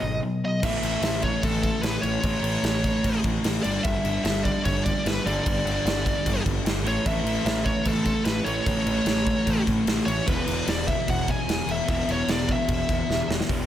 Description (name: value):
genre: hard rock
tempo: 149 BPM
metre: 4/4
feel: straight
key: unclear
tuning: A4 = 441 Hz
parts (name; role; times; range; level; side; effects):
- high-gain lead guitar; melody; 0.0-13.3 s; A4 to G#5; -29 LUFS; equal; distortion
- crunchy overdriven guitar; riff; 0.0-13.7 s; E2 to A3; -27 LUFS; equal; spring reverb
- fuzz picked electric bass; bass; 0.0-13.6 s; E1 to A1; -30 LUFS; equal; overdrive
- big rock drum kit; drums; 0.6-13.6 s; crash cymbal, hi-hat, kick drum, snare drum; -27 LUFS; equal; none
room: small room ambience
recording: none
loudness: -22 LUFS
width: side -11 dB against mid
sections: 0.6-13.5 A section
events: drum fill 13.1-13.5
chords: 0.0 B; 0.6 A; 3.6 G5; 6.9 A; 10.3 E5